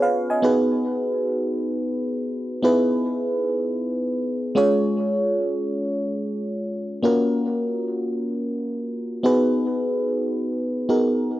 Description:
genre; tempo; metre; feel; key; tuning
pop; free time; none; none; unclear; A4 = 445 Hz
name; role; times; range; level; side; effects
FM electric piano; solo; 0.0-11.4 s; G#3 to G#5; -20 LUFS; equal; chorus, analog delay
room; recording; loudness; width
wet booth ambience, RT60 0.2 s; home recording on cassette; -21 LUFS; side -15 dB against mid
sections
0.4-11.4 A section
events
none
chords
0.4 B6; 2.6 Emaj7/B; 4.6 C#; 7.0 F#maj7; 9.2 B6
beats
free time

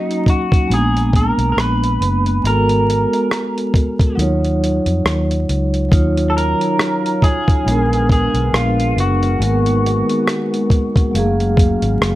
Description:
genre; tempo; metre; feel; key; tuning
lo-fi hip hop; 69 BPM; 4/4; swing 55% on 16ths; Eb minor; A4 = 440 Hz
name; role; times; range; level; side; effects
electric guitar through a small old amp; melody; 0.0-11.6 s; Eb4 to Cb5; -21 LUFS; equal; vibrato effect
vibraphone with soft mallets; accompaniment; 0.0-12.2 s; Gb3 to F5; -18 LUFS; equal; cassette tape
dusty soul sampler-style drum kit; drums; 0.1-12.2 s; hi-hat, kick drum, rim click; -16 LUFS; equal; none
vintage muted fingered electric bass; bass; 0.7-12.2 s; Gb1 to F2; -18 LUFS; equal; none
lush unison pad; sustained chords; 5.9-12.2 s; Db3 to F5; -26 LUFS; left 1 dB; chorus
room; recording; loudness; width
light reverb; vinyl crackle, faint mains hum; -14 LUFS; side -16 dB against mid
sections
0.0-5.9 A section; 5.9-12.2 A section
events
kick muted 4.2-5.9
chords
0.0 Ebm7; 0.7 Bb7b9; 2.4 Abm9; 4.2 Ebm9; 7.7 Bb7b9; 9.4 Abm9; 11.1 Gbmaj9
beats
0.71 1.58 | 2.45 3.32 4.18 5.05 | 5.92 6.79 7.66 8.53 | 9.40 10.27 11.14 12.01

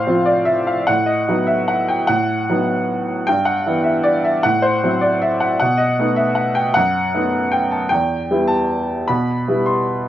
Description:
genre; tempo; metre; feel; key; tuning
classical, piano waltz; 153 BPM; 3/4; uneven beats, rubato; E minor; A4 = 440 Hz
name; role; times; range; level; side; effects
clear upright piano; solo; 0.0-10.1 s; E2 to C6; -15 LUFS; equal; none
room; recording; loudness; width
light reverb; worn, warbling old tape, cassette tape, warbly pitch drift; -15 LUFS; side -12 dB against mid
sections
0.0-10.1 A section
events
none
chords
0.0 F/A; 0.9 B7/A; 3.3 Em/G; 4.4 F#m7b5/A; 5.6 B7; 7.9 Em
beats
0.07 0.47 | 0.88 1.27 1.68 | 2.08 2.48 2.88 | 3.27 3.65 4.04 | 4.43 4.81 5.21 | 5.60 5.98 6.37 | 6.75 7.13 7.52 | 7.91 8.30 8.70 | 9.09 9.48 9.88

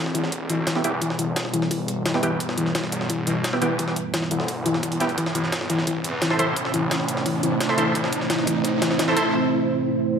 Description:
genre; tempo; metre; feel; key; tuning
dark technical drum and bass; 173 BPM; 4/4; straight; E minor; A4 = 440 Hz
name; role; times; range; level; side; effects
deep dark ambient pad; sustained chords; 0.0-10.2 s; G3 to C5; -27 LUFS; right 2 dB; chorus, built-in reverb, sidechain pumping
felt-muted upright piano; arpeggios; 0.0-9.0 s; E3; -26 LUFS; left 3 dB; sidechain pumping, low-pass filter, tape echo
snarling distorted saw bass; bass; 0.0-9.3 s; E1 to E2; -30 LUFS; equal; distortion, tube saturation, high-pass filter
riser; sound effects; 3.5-9.3 s; none; -32 LUFS; right 2 dB; none
electronic hi-hat; drums; 0.1-9.2 s; none; -31 LUFS; right 1 dB; overdrive
jungle sampler-style drum kit; drums; 0.1-9.2 s; hi-hat, snare drum; -29 LUFS; equal; high-pass filter on hats, high-pass filter on snare, high-pass filter on room
electronic kick drum; drums; 0.3-9.2 s; none; -35 LUFS; equal; none
orchestra-hit-like synth stab; stabs; 0.8-9.2 s; B3 to C5; -25 LUFS; right 2 dB; built-in reverb, tape echo
room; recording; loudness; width
moderate digital room reverb, RT60 1.1 s, digital ambience; none; -20 LUFS; side -6 dB against mid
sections
0.0-10.2 A section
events
build-up 0.0-10.2; filter sweep on ambient pad 0.0-10.2; filter sweep on felt piano 0.0-10.2; filter sweep on synth stab 0.0-10.2; riser 3.5-9.3; drum fill 5.2-9.3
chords
0.0 Em; 5.2 Am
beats
0.32 0.67 | 1.02 1.36 1.71 2.06 | 2.40 2.75 3.10 3.44 | 3.79 4.14 4.48 4.83 | 5.18 5.52 5.87 6.22 | 6.57 6.91 7.26 7.61 | 7.95 8.30 8.65 8.99 | 9.34 9.69 10.03

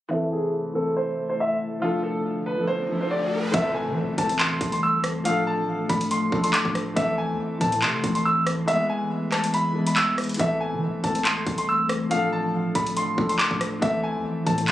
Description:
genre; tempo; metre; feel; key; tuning
hip hop, drill; 140 BPM; 4/4; half-time; A harmonic minor; A4 = 440 Hz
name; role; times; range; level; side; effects
clear upright piano; melody; 0.1-14.7 s; E4 to E6; -25 LUFS; equal; low-pass filter, digital delay
dark grand piano; accompaniment; 0.1-14.7 s; E3 to A4; -28 LUFS; equal; low-pass filter
glassy FM pad; sustained chords; 0.3-14.7 s; C3 to A4; -31 LUFS; left 2 dB; ensemble chorus, built-in reverb, low-pass filter
riser and impact; sound effects; 2.6-5.3 s; none; -34 LUFS; equal; none
long sustained 808-style bass; bass; 3.5-14.7 s; D1 to E3; -33 LUFS; right 1 dB; none
drill drum kit; drums; 3.5-14.7 s; handclaps, hi-hat, kick drum, rim click; -25 LUFS; equal; vintage 12-bit sampler grit
room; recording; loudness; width
light reverb, digital ambience; recorded on a phone in the room, studio ambience, compression; -22 LUFS; side -13 dB against mid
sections
0.1-3.5 A section; 3.5-14.7 B section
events
filter sweep 0.1-3.5; riser 2.6-3.5; impact 3.5-5.3; kick muted 8.7-10.4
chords
0.1 Am; 1.8 Dm; 3.5 Am; 5.3 Dm; 7.0 Am; 8.7 E; 10.4 Am; 12.1 Dm; 13.8 Am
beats
| 0.11 0.54 0.97 1.39 | 1.82 2.25 2.68 3.11 | 3.54 3.97 4.39 4.82 | 5.25 5.68 6.11 6.54 | 6.97 7.39 7.82 8.25 | 8.68 9.11 9.54 9.97 | 10.39 10.82 11.25 11.68 | 12.11 12.54 12.97 13.39 | 13.82 14.25 14.68

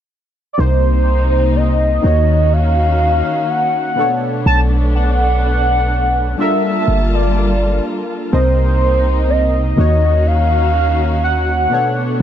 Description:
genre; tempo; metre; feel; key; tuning
R&B; 62 BPM; 4/4; swing 54% on 16ths; unclear; A4 = 439 Hz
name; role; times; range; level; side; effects
warm velvety synth lead; melody; 0.5-12.2 s; C5 to A5; -17 LUFS; equal; chorus, ping-pong delay
warm analog keys; accompaniment; 0.6-12.2 s; B2 to Eb5; -20 LUFS; left 2 dB; chorus
dark studio string section; sustained chords; 0.6-12.2 s; C3 to A5; -24 LUFS; left 1 dB; none
warm 808-style bass; bass; 0.6-11.7 s; G1 to Eb2; -15 LUFS; equal; none
room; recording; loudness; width
digital ambience; none; -12 LUFS; side -10 dB against mid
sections
0.6-12.2 A section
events
none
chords
0.0 N.C.; 0.6 Cm7; 2.0 Ebm9; 4.0 Bm9; 6.4 Gm9; 8.3 Cm7; 9.8 Ebm9; 11.7 Bm9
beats
| 0.58 1.55 2.52 3.49 | 4.46 5.42 6.39 7.36 | 8.33 9.29 10.26 11.23 | 12.20

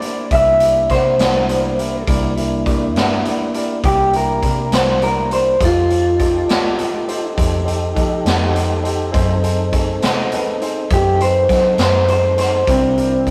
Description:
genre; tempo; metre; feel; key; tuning
slow blues; 68 BPM (dotted quarters); 12/8; straight; unclear; A4 = 440 Hz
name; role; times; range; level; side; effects
electric guitar through a small old amp; melody; 0.0-13.3 s; C4 to E5; -18 LUFS; equal; spring reverb, digital delay
warm upright piano; accompaniment; 0.0-13.3 s; D4 to E5; -29 LUFS; equal; none
tonewheel organ; sustained chords; 0.0-13.3 s; Bb3 to Bb4; -26 LUFS; equal; slow rotary speaker, overdrive
raw garage drum kit; drums; 0.0-13.3 s; hi-hat, kick drum, snare drum; -22 LUFS; equal; none
vintage muted fingered electric bass; bass; 0.3-13.3 s; C2 to F#3; -23 LUFS; equal; none
room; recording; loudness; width
light reverb; rough rehearsal-room recording, tube saturation; -16 LUFS; mono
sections
0.0-13.3 A section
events
none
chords
0.0 C7; 5.6 F7; 9.1 F#dim7; 12.7 C7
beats
0.31 1.19 | 2.07 2.95 3.83 4.72 | 5.60 6.48 7.37 8.25 | 9.13 10.02 10.90 11.79 | 12.68

